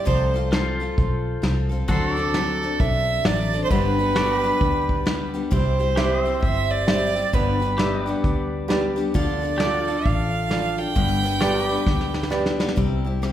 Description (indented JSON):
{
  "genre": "honky-tonk and classic country",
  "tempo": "132 BPM",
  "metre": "4/4",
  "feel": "swing 62% on 8ths",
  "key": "unclear",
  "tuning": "A4 = 440 Hz",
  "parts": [
    { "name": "clear fiddle", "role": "second line", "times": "0.0-12.3 s", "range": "A4 to G5", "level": "-25 LUFS", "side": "right 3 dB", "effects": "none" },
    { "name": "picked steel-string acoustic guitar", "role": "accompaniment", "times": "0.0-13.3 s", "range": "G2 to B4", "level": "-27 LUFS", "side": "left 4 dB", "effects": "none" },
    { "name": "pedal steel guitar", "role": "sustained chords", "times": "0.0-12.8 s", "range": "F4 to E5", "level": "-30 LUFS", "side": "equal", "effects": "none" },
    { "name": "vintage muted fingered electric bass", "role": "bass", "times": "0.1-13.3 s", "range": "G1 to D2", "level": "-26 LUFS", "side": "equal", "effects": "none" },
    { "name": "soft brush drum kit", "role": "drums", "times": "0.1-13.3 s", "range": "hi-hat, kick drum, rim click, snare drum", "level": "-25 LUFS", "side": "equal", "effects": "none" },
    { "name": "warm upright piano", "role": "accompaniment", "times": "6.0-12.6 s", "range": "F4 to E5", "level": "-28 LUFS", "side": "right 3 dB", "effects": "none" }
  ],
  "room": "wet concert hall reverb, RT60 1.8 s",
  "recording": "recorded in a church or concert hall",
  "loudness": "-19 LUFS",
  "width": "side -11 dB against mid",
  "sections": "0.0-12.8 A section",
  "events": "fiddle solo 0.0-12.8; drum fill 11.9-12.8",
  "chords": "0.1 F/C; 1.9 D7; 3.7 G; 5.5 C; 7.3 G; 9.1 Dm; 11.0 G; 12.8 C",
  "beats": "| 0.07 0.52 0.98 1.43 | 1.89 2.34 2.79 3.25 | 3.70 4.15 4.61 5.06 | 5.52 5.97 6.42 6.88 | 7.33 7.78 8.24 8.69 | 9.14 9.60 10.05 10.51 | 10.96 11.41 11.87 12.32 | 12.77 13.23"
}